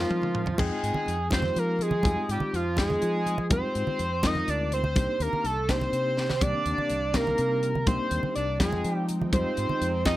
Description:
electric jazz fusion; 82 BPM (dotted quarters); 6/8; straight; F dorian; A4 = 438 Hz
overdriven synth lead; melody; 0.0-10.2 s; F4 to Eb5; -28 LUFS; equal; chorus
warm tenor saxophone; second line; 0.0-10.2 s; F3 to Eb4; -36 LUFS; right 3 dB
bright reed electric piano; accompaniment; 0.0-10.2 s; Eb3 to G5; -34 LUFS; left 3 dB; overdrive, harmonic tremolo
brassy analog pad; sustained chords; 0.0-0.6, 6.4-10.2 s; C3 to G5; -38 LUFS; right 1 dB
fingered electric bass; bass; 0.0-10.2 s; C2 to F3; -30 LUFS; equal
tight funk drum kit; drums; 0.1-10.2 s; crash cymbal, hi-hat, kick drum, snare drum, toms; -29 LUFS; equal
congas; percussion; 0.1-10.2 s; -32 LUFS; right 2 dB
light reverb; -24 LUFS; side -15 dB against mid
0.6-10.2 A section
drum fill 0.0-0.6, 6.2
0.0 Fm7; 0.6 Fm9; 5.0 Cm9; 8.6 Fm9
| 0.59 1.32 | 2.05 2.78 | 3.51 4.23 | 4.96 5.69 | 6.42 7.15 | 7.88 8.60 | 9.33 10.06

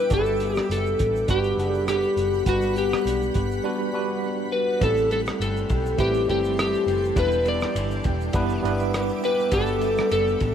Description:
indie pop, bedroom pop; 102 BPM; 4/4; swing 55% on 16ths; G major; A4 = 440 Hz
electric slide guitar; melody; 0.0-10.5 s; F#4 to D5; -23 LUFS; left 2 dB; analog chorus
electric guitar through a small old amp; accompaniment; 0.0-10.5 s; A2 to G4; -32 LUFS; left 7 dB; lush chorus, warbly pitch drift
tine electric piano; accompaniment; 0.0-10.5 s; G3 to F#5; -28 LUFS; right 5 dB; overdrive, fast stereo tremolo, cassette tape
shimmering ambient pad; sustained chords; 0.0-10.5 s; G3 to D6; -35 LUFS; equal; chorus, built-in reverb
vintage muted picked electric bass; bass; 0.1-10.5 s; E1 to B1; -28 LUFS; equal
cloth-damped thuddy drum kit; drums; 0.1-10.5 s; hi-hat, kick drum, ride cymbal, rim click, shaker; -29 LUFS; equal
small room ambience; rough home demo mix; -21 LUFS; side -8 dB against mid
0.0-4.8 A section; 4.8-10.5 A section
break 3.6-4.8
0.1 Gmaj7; 4.8 Am7; 7.2 Em7; 9.5 Gmaj7
| 0.12 0.70 1.29 1.88 | 2.47 3.06 3.64 4.23 | 4.82 5.41 5.99 6.58 | 7.17 7.76 8.34 8.93 | 9.52 10.11

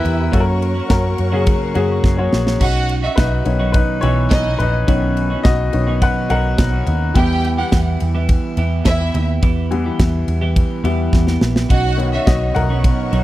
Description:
piano-driven pop; 106 BPM; 4/4; straight; B major; A4 = 440 Hz
warm studio violin section; second line; 0.0-12.5 s; D#4 to G5; -23 LUFS; right 2 dB
clear upright piano; accompaniment; 0.0-13.2 s; D#3 to F#5; -21 LUFS; left 5 dB
rich symphonic string section; sustained chords; 0.0-2.6, 11.7-13.2 s; B3 to E6; -30 LUFS; equal
twelve-string electric guitar; riff; 0.0-13.2 s; F#2 to G4; -24 LUFS; right 4 dB; wide subtle chorus
vintage muted picked electric bass; bass; 0.0-13.2 s; A#1 to F#2; -18 LUFS; equal
modern studio drum kit; drums; 0.1-13.2 s; crash cymbal, kick drum, ride cymbal, snare drum, toms; -18 LUFS; equal
little or no reverb; dry, close 1970s-style studio recording; -14 LUFS; side -15 dB against mid
0.0-2.6 A section; 2.6-13.2 A section
drum fill 2.0-2.6, 11.1-11.7; upright piano solo 2.6-13.2
0.3 F#; 2.6 Badd9; 7.2 Em; 11.7 Badd9
| 0.33 0.90 1.47 2.04 | 2.61 3.18 3.75 4.31 | 4.88 5.45 6.02 6.59 | 7.16 7.72 8.29 8.86 | 9.43 10.00 10.56 11.13 | 11.70 12.27 12.84

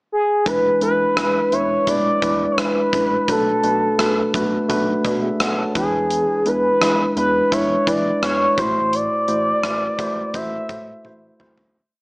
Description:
1980s-style pop; 85 BPM; 4/4; straight; E mixolydian; A4 = 440 Hz
expressive portamento lead; melody; 0.1-11.4 s; G#4 to E5; -18 LUFS; equal; chorus
mellow tine electric piano; accompaniment; 0.5-11.8 s; A2 to A5; -22 LUFS; equal; medium stereo tremolo
chorused synth bass; bass; 0.5-11.7 s; E1 to E3; -29 LUFS; equal
gated 80s drum kit; drums; 0.5-11.7 s; hi-hat, kick drum, rim click, toms; -24 LUFS; equal
light reverb, small room reverb; small speaker sound; -16 LUFS; side -36 dB against mid
0.0-0.5 pickup bar; 0.5-11.8 verse
fade-out 8.9-11.8; drum fill 11.0-11.8
0.5 E7; 3.3 Bm7; 5.8 E7; 8.6 Am6
| 0.46 1.17 1.87 2.58 | 3.28 3.99 4.70 5.40 | 6.11 6.81 7.52 8.22 | 8.93 9.64 10.34 11.05

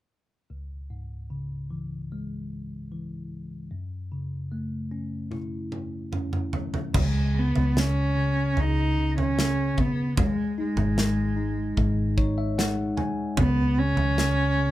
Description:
pop ballad; 75 BPM; 4/4; straight; A4 = 441 Hz
bell-like tine electric piano; accompaniment; 0.5-14.7 s; C#2 to G#5; -29 LUFS; left 1 dB; phaser
modern studio drum kit; drums; 5.3-14.4 s; crash cymbal, kick drum, snare drum, toms; -28 LUFS; right 1 dB
vintage muted fingered electric bass; bass; 6.9-14.7 s; F#1 to C#2; -27 LUFS; equal
warm cello; melody; 7.0-14.7 s; G#3 to D#4; -27 LUFS; right 2 dB
moderate studio ambience, RT60 0.5 s; band playing live in one room; -23 LUFS; side -14 dB against mid
0.5-6.9 A section; 6.9-14.7 B section
drum fill 5.3-6.9; tine electric piano fill 11.8-13.4
0.5 C#m; 3.7 F#m7; 6.9 F#sus4; 10.2 G#5; 13.4 F#sus4 (rootless)
| 0.49 1.30 2.10 2.90 | 3.70 4.51 5.31 6.12 | 6.94 7.76 8.57 9.38 | 10.18 10.98 11.78 12.58 | 13.38 14.17

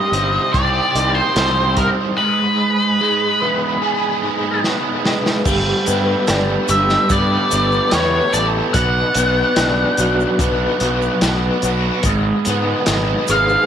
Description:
psychedelic rock; 73 BPM; 4/4; straight; A4 = 440 Hz
octave-fuzz lead guitar; melody; 0.0-13.7 s; A#4 to F#5; -18 LUFS; left 1 dB; wah, distortion, tape echo
combo organ; sustained chords; 0.0-13.7 s; G3 to D#5; -25 LUFS; right 17 dB; spring reverb
biting overdriven guitar; riff; 0.0-13.7 s; G#2 to A4; -19 LUFS; equal; rotary speaker
fuzz fingered electric bass; bass; 0.1-13.6 s; G1 to G#2; -21 LUFS; equal; overdrive
crunchy breakbeat drum kit; drums; 0.1-13.5 s; crash cymbal, hi-hat, kick drum, snare drum; -21 LUFS; equal
tube shaker; percussion; 5.5-13.6 s; -29 LUFS; left 20 dB
small room reverb; 1960s-style stereo with parts hard left and right; -14 LUFS; side -9 dB against mid
0.0-5.5 A section; 5.5-13.7 B section
drum fill 4.6-5.5
0.0 Cm; 2.2 G#m; 5.5 Gadd9; 8.7 Bm; 12.0 G#m
0.55 1.36 | 2.18 3.00 3.82 4.64 | 5.46 6.28 7.10 7.92 | 8.75 9.57 10.39 11.21 | 12.04 12.86

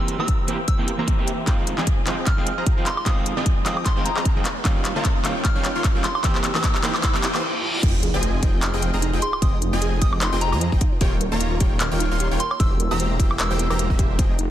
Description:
future bass; 151 BPM; 4/4; swing 56% on 16ths, half-time; F minor; A4 = 440 Hz
soft synth bell; melody; 0.0-13.7 s; Bb5 to F6; -29 LUFS; equal; chorus, vintage 12-bit sampler grit, sidechain pumping, digital delay
electric guitar at the edge of break-up; accompaniment; 0.0-7.3 s; Eb3 to Bb4; -28 LUFS; right 2 dB; sidechain pumping, digital delay
supersaw stab; riff; 0.0-14.3 s; Eb3 to C6; -27 LUFS; equal; sidechain pumping, low-pass filter
trap drum kit; drums; 0.1-14.5 s; crash cymbal, handclaps, hi-hat, woodblock; -26 LUFS; left 1 dB
electronic kick drum; drums; 0.3-14.3 s; -21 LUFS; equal
riser, reverse cymbal and sub drop; sound effects; 4.1-9.4 s; -31 LUFS; equal
soft round pluck; arpeggios; 7.8-14.4 s; Eb4 to Bb5; -32 LUFS; right 3 dB; chorus, sidechain pumping, digital delay
wide detuned saw bass; bass; 7.8-14.5 s; Eb1 to F2; -23 LUFS; equal; chorus, sidechain pumping
light reverb, digital ambience; dense, heavily limited modern master, lossy compression artefacts; -19 LUFS; side -12 dB against mid
0.0-7.8 A section; 7.8-14.5 B section
build-up 0.0-7.8; drum fill 1.5-7.4; riser 4.1-7.8; reverse cymbal 7.0-7.8; break 7.4-7.8; drop 7.8-14.5; impact 7.8-9.4
0.0 C7/E; 1.5 Fm7; 4.5 Eb9; 6.2 C7/E; 7.8 Fm7; 10.8 Eb9; 12.6 C7/E
0.28 0.68 1.08 | 1.47 1.87 2.27 2.67 | 3.06 3.46 3.86 4.25 | 4.65 5.05 5.45 5.84 | 6.24 6.64 7.04 7.43 | 7.83 8.23 8.63 9.02 | 9.42 9.82 10.21 10.61 | 11.01 11.41 11.80 12.20 | 12.60 13.00 13.39 13.79 | 14.19

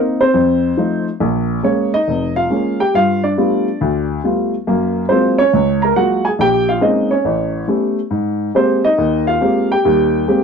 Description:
solo jazz; 139 BPM; 4/4; swing 66% on 8ths; Ab major; A4 = 440 Hz
warm upright piano; solo; 0.0-10.4 s; F1 to Bb5; -13 LUFS; equal
light reverb; -13 LUFS; side -6 dB against mid
0.0-10.4 A section
0.3 F7; 1.2 Bbm7; 2.9 G9; 4.7 Gbmaj9; 6.4 Bbm11; 7.3 A9; 8.1 Abmaj9
0.34 0.77 | 1.21 1.64 2.07 2.50 | 2.94 3.37 3.80 4.23 | 4.66 5.09 5.53 5.96 | 6.39 6.82 7.26 7.69 | 8.12 8.55 8.99 9.42 | 9.85 10.28

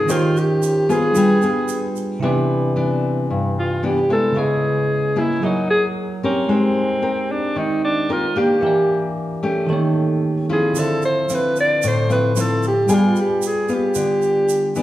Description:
bossa nova; 112 BPM; 4/4; straight; A4 = 444 Hz
breathy alto saxophone; melody; 0.0-14.8 s; C4 to D5; -19 LUFS; equal
bell-like tine electric piano; accompaniment; 0.0-14.8 s; C3 to Ab5; -23 LUFS; right 3 dB
nylon-string guitar; accompaniment; 0.0-14.8 s; G2 to C5; -20 LUFS; left 2 dB
egg shaker; percussion; 0.1-2.2, 10.8-14.8 s; -33 LUFS; right 8 dB
wet recital hall reverb, RT60 1.5 s; recorded in a church or concert hall; -16 LUFS; side -14 dB against mid
0.0-2.2 A section; 2.2-14.8 B section
alto saxophone solo 2.2-14.8
0.1 Eb13; 1.2 G7b9; 2.2 Cmaj9; 4.4 Dbm7; 5.4 F#9; 6.5 Abmaj9; 8.6 Em7b5; 9.7 Eb7#11; 10.8 Dm9; 12.9 G7b9
| 0.09 0.62 1.16 1.69 | 2.23 2.76 3.29 3.83 | 4.36 4.89 5.43 5.96 | 6.50 7.03 7.56 8.10 | 8.63 9.16 9.70 10.23 | 10.76 11.30 11.83 12.36 | 12.90 13.43 13.96 14.50

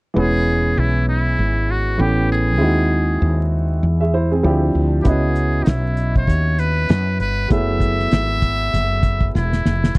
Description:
hip hop, jazz-hop; 98 BPM; 4/4; swing 58% on 16ths; A4 = 441 Hz
clear upright piano; accompaniment; 0.1-9.9 s; E3 to G5; -22 LUFS; right 1 dB
trumpet with metal mute; melody; 0.2-10.0 s; D#4 to E5; -22 LUFS; equal
woody fretless electric bass; bass; 0.2-10.0 s; E1 to F#2; -18 LUFS; equal
cloth-damped thuddy drum kit; drums; 5.0-10.0 s; hi-hat, kick drum, snare drum; -17 LUFS; equal
little or no reverb; dry, close 1970s-style studio recording, vinyl crackle; -15 LUFS; side -25 dB against mid
0.2-10.0 A section
drum fill 9.3-10.0
0.2 E6; 2.0 A9; 2.6 G#7b13/D#; 4.4 Dm11; 5.1 C#m11; 7.5 F#m11
| 0.16 0.77 1.38 1.99 | 2.61 3.22 3.83 4.44 | 5.05 5.67 6.28 6.89 | 7.50 8.12 8.73 9.34 | 9.95

